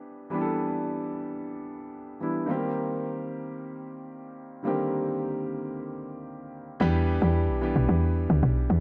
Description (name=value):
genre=amapiano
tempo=111 BPM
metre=4/4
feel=straight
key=E minor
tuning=A4 = 441 Hz
part: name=warm grand piano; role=accompaniment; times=0.0-8.8 s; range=D3 to A4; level=-32 LUFS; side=equal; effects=none
part: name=woody log drum bass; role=bass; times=6.8-8.8 s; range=B1 to E2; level=-25 LUFS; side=equal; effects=none
room=light reverb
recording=none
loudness=-28 LUFS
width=mono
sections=0.0-6.8 A section; 6.8-8.8 B section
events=drop 6.8-8.8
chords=0.0 Em7; 2.5 Cm7; 6.8 Em7